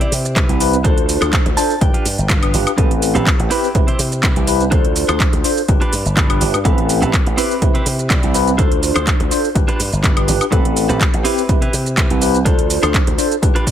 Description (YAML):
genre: filtered disco house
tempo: 124 BPM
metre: 4/4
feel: swing 54% on 16ths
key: unclear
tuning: A4 = 440 Hz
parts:
  - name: direct-recorded clean electric guitar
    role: riff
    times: 0.0-13.7 s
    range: C4 to A5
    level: -24 LUFS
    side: right 2 dB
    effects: spring reverb, sidechain pumping
  - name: slap bass with an envelope filter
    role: bass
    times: 0.0-13.2 s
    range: G1 to C3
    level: -20 LUFS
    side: equal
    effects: sidechain pumping
  - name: house drum kit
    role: drums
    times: 0.0-13.7 s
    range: handclaps, hi-hat, shaker, woodblock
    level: -20 LUFS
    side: right 1 dB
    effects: sidechain pumping on hats, sidechain pumping on perc
  - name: electronic kick drum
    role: drums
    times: 0.4-13.7 s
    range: none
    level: -16 LUFS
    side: equal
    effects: none
  - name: tine electric piano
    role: accompaniment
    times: 0.5-13.5 s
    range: C4 to C5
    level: -19 LUFS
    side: left 1 dB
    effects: medium stereo tremolo, phaser, sidechain pumping
room: little or no reverb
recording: none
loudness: -13 LUFS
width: side -10 dB against mid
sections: 0.0-13.7 A section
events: clean electric guitar fill 1.3-2.8, 13.4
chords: 0.0 Cmaj7; 0.8 Dm7; 1.8 G7; 2.8 Am9; 3.5 Cmaj7; 4.7 Dm7; 5.7 G7; 6.7 Am9; 7.4 Cmaj7; 8.6 Dm7; 9.6 G7; 10.5 Am9; 11.2 Cmaj7; 12.5 Dm7